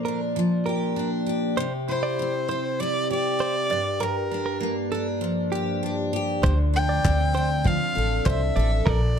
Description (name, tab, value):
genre	acoustic pop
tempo	99 BPM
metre	4/4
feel	straight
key	D minor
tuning	A4 = 441 Hz
part	picked steel-string acoustic guitar	accompaniment	0.0-9.2 s	G2 to A4	-26 LUFS	equal	double-tracked left and right, plate reverb
part	direct-recorded clean electric guitar	arpeggios	0.1-9.0 s	G4 to D5	-32 LUFS	right 6 dB	warbly pitch drift, plate reverb, tape echo
part	warm violin	melody	1.9-9.2 s	Bb4 to G5	-27 LUFS	equal	plate reverb
part	upright bass	bass	6.4-9.2 s	A1 to D2	-23 LUFS	equal	none
part	kick drum	drums	6.4-9.0 s	none	-24 LUFS	equal	none
part	group handclap	percussion	7.0-8.4 s	none	-34 LUFS	left 9 dB	none
room	light reverb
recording	dark, warm production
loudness	-22 LUFS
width	side -7 dB against mid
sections	0.0-9.2 A section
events	none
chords	0.0 Bb6; 1.6 C; 3.7 Gm7; 6.4 Dm7